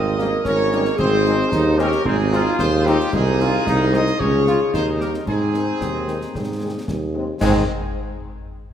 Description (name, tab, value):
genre	military-style march for wind band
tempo	112 BPM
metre	2/4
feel	straight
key	Ab major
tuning	A4 = 439 Hz
part	dark trumpet section	melody	0.0-7.6 s	G4 to Eb5	-26 LUFS	right 1 dB	none
part	dark woodwind section	second line	0.0-7.6 s	Eb4 to C5	-24 LUFS	left 2 dB	none
part	clear trombone section	sustained chords	0.0-7.6 s	Eb3 to F4	-25 LUFS	right 1 dB	none
part	mellow tuba	bass	0.0-7.6 s	Ab1 to Ab2	-20 LUFS	right 2 dB	none
part	mellow French horn section	accompaniment	0.2-7.6 s	Eb3 to F4	-28 LUFS	left 4 dB	none
part	concert snare drum, concert bass drum and clash cymbals	drums	0.2-7.7 s	none	-29 LUFS	left 1 dB	none
room	moderate concert hall reverb, RT60 2.2 s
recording	none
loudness	-17 LUFS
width	side -9 dB against mid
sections	0.0-7.4 A section; 7.4-8.5 B section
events	none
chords	0.0 Eb7/Ab; 1.0 Ab; 3.1 Ab/C; 4.2 Db; 4.7 Eb; 5.3 Ab